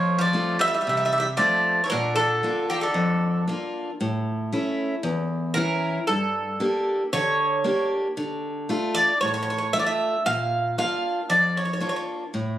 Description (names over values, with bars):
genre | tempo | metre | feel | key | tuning
greek folk, Greek bouzouki band | 115 BPM | 4/4 | straight | unclear | A4 = 440 Hz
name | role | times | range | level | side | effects
Greek bouzouki | melody | 0.0-12.0 s | G4 to F5 | -22 LUFS | right 1 dB | none
Greek bouzouki | second line | 0.0-3.4 s | D3 to Bb3 | -28 LUFS | left 1 dB | none
picked steel-string acoustic guitar | accompaniment | 0.0-12.6 s | E2 to G4 | -26 LUFS | left 1 dB | none
room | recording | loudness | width
light reverb | recorded on a phone in the room, studio reverb, compression | -21 LUFS | side -12 dB against mid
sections
0.0-4.0 A section; 4.0-12.6 B section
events
none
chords
0.0 F; 1.9 Bb; 4.0 A; 6.1 Gm; 8.2 Dm; 10.3 Bb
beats
0.34 0.86 1.38 | 1.90 2.42 2.95 3.47 | 3.99 4.51 5.04 5.56 | 6.08 6.60 7.12 7.65 | 8.17 8.69 9.21 9.73 | 10.26 10.78 11.30 11.82 | 12.35